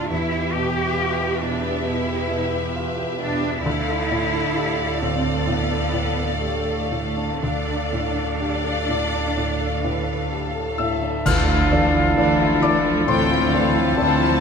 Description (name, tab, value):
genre	cinematic, emotional film score for orchestra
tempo	58-69 BPM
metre	4/4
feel	rubato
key	D dorian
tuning	A4 = 443 Hz
part	warm symphonic violin section	melody	0.0-14.4 s	E5 to A5	-29 LUFS	left 3 dB	none
part	rich symphonic violin section	second line	0.0-14.4 s	E4 to D5	-29 LUFS	left 4 dB	none
part	felt-muted upright piano	accompaniment	0.0-14.4 s	D2 to F6	-26 LUFS	left 1 dB	none
part	rich symphonic viola section	accompaniment	0.0-14.4 s	E3 to A4	-30 LUFS	right 1 dB	none
part	rich symphonic cello section	bass	0.0-14.4 s	D2 to G4	-27 LUFS	right 1 dB	none
part	rich symphonic double bass section	bass	0.0-14.4 s	D2 to E2	-27 LUFS	right 3 dB	none
part	cymbal swell, clash cymbals and concert bass drum	percussion	7.4-13.0 s	none	-29 LUFS	equal	none
part	concert flute	second line	10.8-14.4 s	C5 to F5	-26 LUFS	left 2 dB	none
part	warm French horn section	sustained chords	10.8-14.4 s	C4 to E4	-23 LUFS	left 3 dB	none
part	bright oboe	second line	11.2-14.4 s	A4	-29 LUFS	equal	none
part	dark clarinet	second line	11.3-14.4 s	E4	-29 LUFS	right 1 dB	none
room	moderate scoring stage reverb, RT60 1.7 s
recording	none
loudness	-19 LUFS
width	side -6 dB against mid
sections	0.0-11.3 A section; 11.3-14.4 A section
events	band accent 11.3-12.2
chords	0.1 Em; 3.7 Dmadd9; 7.4 Dm; 11.3 Dmadd9